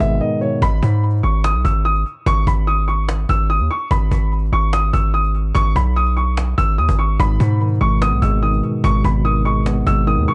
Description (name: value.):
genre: hip hop, trap.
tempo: 146 BPM.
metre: 4/4.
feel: half-time.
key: G# minor.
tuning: A4 = 442 Hz.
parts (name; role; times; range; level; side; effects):
dark concert grand piano; melody; 0.0-10.3 s; C#5 to E6; -23 LUFS; equal; digital delay.
tine electric piano; accompaniment; 0.0-0.6, 7.2-10.3 s; G#2 to B3; -22 LUFS; equal; none.
hard-hitting 808-style bass; bass; 0.0-10.3 s; G#1 to G#2; -19 LUFS; equal; none.
cajon; drums; 0.0-10.1 s; none; -28 LUFS; equal; none.
room: small room ambience.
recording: dark, warm production, nothing above 10.5 kHz.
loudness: -17 LUFS.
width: mono.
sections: 0.6-10.3 A section.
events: drums muted 0.2-0.6.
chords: 0.0 G#m.